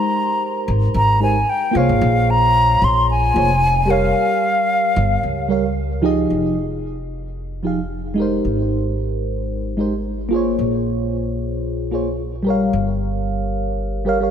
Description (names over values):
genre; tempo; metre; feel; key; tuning
sunset chillout; 112 BPM; 4/4; swing 55% on 16ths; F minor; A4 = 440 Hz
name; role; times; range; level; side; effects
hollow concert flute; melody; 0.0-5.8 s; F5 to C6; -18 LUFS; left 1 dB; ping-pong delay
mellow FM electric piano; accompaniment; 0.0-14.3 s; F3 to F5; -20 LUFS; moving between left 3 dB and right 4 dB; chorus, phaser, auto-pan, digital delay
upright bass; bass; 0.7-14.3 s; F1 to Db2; -21 LUFS; equal; none
room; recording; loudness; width
moderate lush hall reverb, RT60 2.6 s; none; -16 LUFS; side -8 dB against mid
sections
0.0-6.3 A section; 6.3-14.3 B section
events
none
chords
0.0 Abmaj7; 2.0 Bbm7; 4.2 Gm7b5; 6.3 Fm7; 8.4 Abmaj7; 10.6 Bbm7; 12.7 Gm7b5